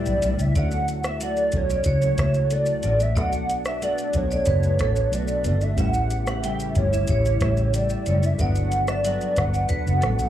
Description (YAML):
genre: indie pop, bedroom pop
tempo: 92 BPM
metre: 4/4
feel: straight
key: D major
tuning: A4 = 439 Hz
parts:
  - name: warbly nostalgic lead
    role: melody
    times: 0.0-10.3 s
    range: C#5 to F#5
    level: -25 LUFS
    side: right 1 dB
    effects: analog chorus, slapback echo
  - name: mellow tonewheel organ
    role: accompaniment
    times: 0.0-10.3 s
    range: C#3 to E5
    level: -35 LUFS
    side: right 4 dB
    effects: slow rotary speaker, slapback echo
  - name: nylon-string guitar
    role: accompaniment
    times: 0.0-10.3 s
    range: G2 to F#4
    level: -32 LUFS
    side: left 5 dB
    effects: analog chorus, vibrato effect, slapback echo
  - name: hollow soft pad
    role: sustained chords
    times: 0.0-10.3 s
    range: C#3 to B4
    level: -35 LUFS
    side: right 1 dB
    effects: ensemble chorus
  - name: vintage muted fingered electric bass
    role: bass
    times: 0.1-10.3 s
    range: F#1 to D2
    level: -24 LUFS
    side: equal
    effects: none
  - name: soft vintage rhythm box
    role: drums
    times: 0.1-10.3 s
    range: hi-hat, kick drum, rim click, shaker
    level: -26 LUFS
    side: equal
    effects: none
  - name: vibraphone with hard mallets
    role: second line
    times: 0.6-10.2 s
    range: A4 to G5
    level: -34 LUFS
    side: right 2 dB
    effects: ensemble chorus, slapback echo
room: light reverb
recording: live gig heard through the venue's PA, club ambience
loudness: -20 LUFS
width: side -11 dB against mid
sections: 0.6-10.3 A section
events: none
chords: 0.0 A7sus4; 0.6 Dmaj7; 3.2 Bm7; 5.8 A7; 8.4 Gmaj7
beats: | 0.56 1.21 1.86 2.51 | 3.17 3.82 4.47 5.13 | 5.78 6.43 7.08 7.74 | 8.39 9.04 9.70